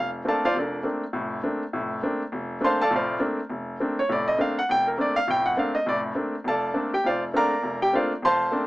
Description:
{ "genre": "jazz", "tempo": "203 BPM", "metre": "4/4", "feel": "swing 60% on 8ths", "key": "Bb major", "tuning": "A4 = 438 Hz", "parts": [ { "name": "clear baby grand piano", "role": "solo", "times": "0.0-8.7 s", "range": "F1 to C6", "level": "-22 LUFS", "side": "equal", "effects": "none" } ], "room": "light reverb", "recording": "small speaker sound", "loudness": "-22 LUFS", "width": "side -18 dB against mid", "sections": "0.0-8.7 A section", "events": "none", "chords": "0.0 Bbmaj9" }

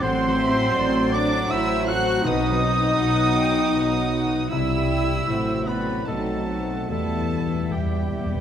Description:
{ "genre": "classical", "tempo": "72-81 BPM", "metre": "3/4", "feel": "rubato", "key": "unclear", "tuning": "A4 = 441 Hz", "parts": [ { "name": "warm chamber violin section", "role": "melody", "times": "0.0-8.4 s", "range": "G5 to F#6", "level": "-31 LUFS", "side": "right 1 dB", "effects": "none" }, { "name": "mellow flute section", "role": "second line", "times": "0.0-8.4 s", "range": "B4 to G5", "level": "-32 LUFS", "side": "equal", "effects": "none" }, { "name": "warm oboe", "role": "second line", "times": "0.0-8.4 s", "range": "G4 to F#5", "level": "-30 LUFS", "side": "right 2 dB", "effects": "none" }, { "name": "dark chamber viola section", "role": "accompaniment", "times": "0.0-8.4 s", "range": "G3 to F#4", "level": "-28 LUFS", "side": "left 2 dB", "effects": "none" }, { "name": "mellow French horn section", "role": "sustained chords", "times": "0.0-8.4 s", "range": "B3 to F#4", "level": "-32 LUFS", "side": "left 5 dB", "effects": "none" }, { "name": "warm trombone section", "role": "sustained chords", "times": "0.0-8.4 s", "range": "G2 to G3", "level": "-31 LUFS", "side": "right 4 dB", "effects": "none" }, { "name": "concert harp", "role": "arpeggios", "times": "0.0-8.4 s", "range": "A2 to B5", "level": "-29 LUFS", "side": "left 7 dB", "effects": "none" }, { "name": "mellow trumpet", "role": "stabs", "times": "0.0-8.4 s", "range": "G4 to F#5", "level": "-30 LUFS", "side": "right 3 dB", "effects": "none" }, { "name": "warm chamber double bass section", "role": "bass", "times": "0.0-8.4 s", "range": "A1 to E2", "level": "-28 LUFS", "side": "right 3 dB", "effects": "none" }, { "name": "warm studio cello section", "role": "bass", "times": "0.0-8.4 s", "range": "G3 to F#4", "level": "-29 LUFS", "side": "right 2 dB", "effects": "none" }, { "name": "warm chamber violin section", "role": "second line", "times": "0.4-8.4 s", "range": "B3 to C5", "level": "-35 LUFS", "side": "left 3 dB", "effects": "none" }, { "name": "timpani", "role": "percussion", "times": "2.2-3.3, 6.9-8.4 s", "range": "E2 to B2", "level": "-31 LUFS", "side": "equal", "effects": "none" } ], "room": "moderate scoring stage reverb, RT60 1.6 s", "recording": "close, detailed microphones", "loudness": "-20 LUFS", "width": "side -9 dB against mid", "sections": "0.0-8.4 A section", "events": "timpani fill 6.9-8.4", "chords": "0.0 F#dim/A; 2.3 B; 4.5 C; 5.3 F#dim/A; 6.1 B7b9; 6.9 Em" }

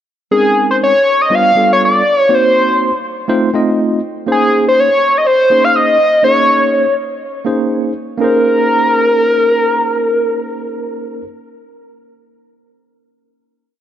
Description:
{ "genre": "jazz", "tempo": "122 BPM", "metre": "4/4", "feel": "straight", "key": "Bb minor", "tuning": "A4 = 439 Hz", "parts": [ { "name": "overdriven synth lead", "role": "melody", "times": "0.3-11.2 s", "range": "Ab4 to F5", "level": "-11 LUFS", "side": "left 1 dB", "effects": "slapback echo" }, { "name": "barky tine electric piano", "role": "accompaniment", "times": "0.3-11.3 s", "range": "G3 to Eb5", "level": "-17 LUFS", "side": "right 2 dB", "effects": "medium stereo tremolo" } ], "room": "moderate plate reverb, RT60 3.6 s", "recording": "dark, warm production", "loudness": "-10 LUFS", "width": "side -10 dB against mid", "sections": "0.3-8.2 A section; 8.2-12.2 final chord", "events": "none", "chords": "0.3 Bbm11; 1.3 G7; 2.3 Cm7b5; 3.3 F7; 4.3 Bbm11" }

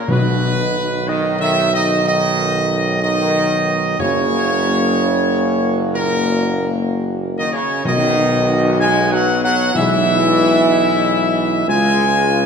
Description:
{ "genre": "classical", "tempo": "62 BPM", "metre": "4/4", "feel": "straight", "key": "B major", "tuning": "A4 = 439 Hz", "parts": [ { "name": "warm trumpet section", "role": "melody", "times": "0.0-12.5 s", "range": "A#4 to G#5", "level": "-18 LUFS", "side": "equal", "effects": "none" }, { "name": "warm trombone section", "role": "sustained chords", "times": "0.0-12.5 s", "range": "A#2 to G#3", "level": "-22 LUFS", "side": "right 3 dB", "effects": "none" }, { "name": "warm French horn section", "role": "sustained chords", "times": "0.1-12.5 s", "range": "D#3 to F#4", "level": "-22 LUFS", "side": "left 4 dB", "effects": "none" }, { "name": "warm tuba", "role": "bass", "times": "0.1-12.5 s", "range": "F#1 to C#2", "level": "-20 LUFS", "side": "right 2 dB", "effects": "none" }, { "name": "timpani", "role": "percussion", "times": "0.1-11.2 s", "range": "F#2 to B2", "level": "-24 LUFS", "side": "left 2 dB", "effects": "none" } ], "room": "wet scoring stage reverb, RT60 2.1 s", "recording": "none", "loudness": "-14 LUFS", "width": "side -6 dB against mid", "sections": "0.0-12.5 A section", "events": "none", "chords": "0.1 B; 4.0 F#; 7.8 B; 9.8 E/B; 11.7 C#" }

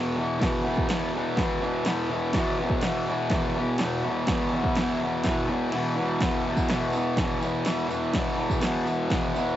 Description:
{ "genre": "garage rock duo or trio", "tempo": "124 BPM", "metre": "4/4", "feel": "straight", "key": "unclear", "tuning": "A4 = 435 Hz", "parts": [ { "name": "fuzz guitar", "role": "riff", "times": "0.0-9.6 s", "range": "E2 to E3", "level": "-25 LUFS", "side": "equal", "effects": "distortion, cassette tape" }, { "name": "punchy analog drum machine", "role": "drums", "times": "0.4-9.2 s", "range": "crash cymbal, kick drum, snare drum", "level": "-28 LUFS", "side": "equal", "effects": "none" }, { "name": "tambourine", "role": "percussion", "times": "6.2-9.5 s", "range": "none", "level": "-47 LUFS", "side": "right 6 dB", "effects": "none" } ], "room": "little or no reverb", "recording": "home recording on cassette, nothing above 7.8 kHz", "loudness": "-23 LUFS", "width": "side -12 dB against mid", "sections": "0.0-9.6 A section", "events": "kick and snare drop out 5.7-6.2", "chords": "0.0 E5" }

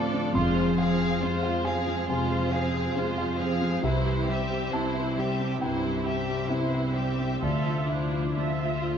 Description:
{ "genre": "cinematic, emotional film score for orchestra", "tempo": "68 BPM", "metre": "4/4", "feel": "rubato", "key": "unclear", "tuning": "A4 = 439 Hz", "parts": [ { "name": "warm studio violin section", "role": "second line", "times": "0.0-9.0 s", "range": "E4 to F5", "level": "-32 LUFS", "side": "left 3 dB", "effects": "none" }, { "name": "felt-muted upright piano", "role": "accompaniment", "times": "0.0-9.0 s", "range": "C2 to D6", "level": "-29 LUFS", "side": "equal", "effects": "none" }, { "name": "warm studio viola section", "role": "accompaniment", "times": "0.0-9.0 s", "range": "E3 to E5", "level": "-32 LUFS", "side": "right 4 dB", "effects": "none" }, { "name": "concert harp", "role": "arpeggios", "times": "0.0-9.0 s", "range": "C3 to E5", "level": "-32 LUFS", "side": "left 5 dB", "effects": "none" }, { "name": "rich symphonic cello section", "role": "bass", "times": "0.0-9.0 s", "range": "C2 to F2", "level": "-34 LUFS", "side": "right 4 dB", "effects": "none" }, { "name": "clear studio double bass section", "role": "bass", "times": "0.3-8.2 s", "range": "F1 to D2", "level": "-35 LUFS", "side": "right 4 dB", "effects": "none" } ], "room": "moderate scoring stage reverb, RT60 1.9 s", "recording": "dark, warm production, nothing above 7.7 kHz", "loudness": "-24 LUFS", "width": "side -8 dB against mid", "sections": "0.0-9.0 A section", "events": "none", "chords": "0.4 Fm; 3.8 C; 7.4 Dmadd9" }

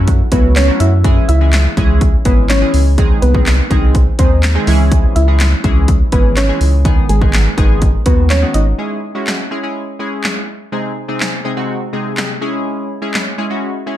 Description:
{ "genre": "dance-pop", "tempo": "124 BPM", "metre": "4/4", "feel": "straight", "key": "C# minor", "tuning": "A4 = 439 Hz", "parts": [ { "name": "chorused retro synth keys", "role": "accompaniment", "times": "0.0-14.0 s", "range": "B#2 to G#4", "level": "-20 LUFS", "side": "equal", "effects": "none" }, { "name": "round analog bass", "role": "bass", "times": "0.0-8.7 s", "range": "G#1 to F#2", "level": "-12 LUFS", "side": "equal", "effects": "sidechain pumping" }, { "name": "punchy analog drum machine", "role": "drums", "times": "0.1-13.3 s", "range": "handclaps, hi-hat, kick drum, snare drum", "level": "-14 LUFS", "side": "equal", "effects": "none" }, { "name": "soft round pluck", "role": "melody", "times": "0.3-8.6 s", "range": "G#3 to E5", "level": "-19 LUFS", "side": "equal", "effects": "chorus, sidechain pumping, ping-pong delay" } ], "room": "light reverb", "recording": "dark, warm production", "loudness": "-11 LUFS", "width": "side -13 dB against mid", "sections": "0.0-8.8 A section; 8.8-14.0 B section", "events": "drop 0.0-8.8", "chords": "0.0 F#m7; 1.0 C#m; 3.0 G#/B#; 4.7 C#m; 6.9 G#m; 8.8 C#m; 10.7 G#/B#; 12.4 C#m" }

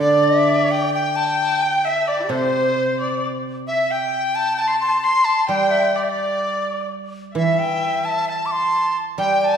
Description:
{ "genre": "chinese traditional, Chinese chamber ensemble", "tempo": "65 BPM", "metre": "2/4", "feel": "rubato", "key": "D shang mode", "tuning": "A4 = 440 Hz", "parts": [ { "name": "bright reedy large dizi", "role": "melody", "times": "0.0-9.6 s", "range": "C5 to D6", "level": "-20 LUFS", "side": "right 1 dB", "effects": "none" }, { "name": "clear erhu", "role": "second line", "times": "0.0-9.6 s", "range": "D4 to C6", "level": "-23 LUFS", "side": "left 4 dB", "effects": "none" }, { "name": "guzheng", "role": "accompaniment", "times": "0.0-9.6 s", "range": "C3 to G3", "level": "-22 LUFS", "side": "right 2 dB", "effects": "none" } ], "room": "wet scoring stage reverb, RT60 1.8 s", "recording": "recorded in a church or concert hall", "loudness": "-17 LUFS", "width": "side -8 dB against mid", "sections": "0.0-9.6 A section", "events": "none", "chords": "none" }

